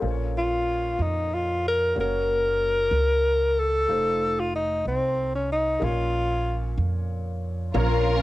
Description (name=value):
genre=gospel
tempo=62 BPM (dotted quarters)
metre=6/8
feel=straight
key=Bb harmonic minor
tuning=A4 = 440 Hz
part: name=warm concert grand piano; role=accompaniment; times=0.0-8.2 s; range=Bb2 to Db5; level=-34 LUFS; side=left 6 dB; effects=cassette tape, plate reverb
part: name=upright bass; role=bass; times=0.0-8.2 s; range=F1 to F2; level=-27 LUFS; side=right 1 dB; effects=none
part: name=breathy tenor saxophone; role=melody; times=0.4-6.8 s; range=C4 to Bb4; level=-23 LUFS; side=left 1 dB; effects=cassette tape, plate reverb
part: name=dark studio string section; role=melody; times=7.7-8.2 s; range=Db4 to Bb4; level=-23 LUFS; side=left 2 dB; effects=cassette tape
part: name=bright tonewheel organ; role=sustained chords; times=7.7-8.2 s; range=F3 to Bb4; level=-30 LUFS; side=right 7 dB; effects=slow rotary speaker, chorus vibrato, cassette tape
room=moderate booth ambience, RT60 0.2 s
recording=home recording on cassette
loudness=-22 LUFS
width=side -16 dB against mid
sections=0.0-7.7 A section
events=none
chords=0.0 Bbm; 2.0 Gb; 3.9 F7; 5.8 Bbm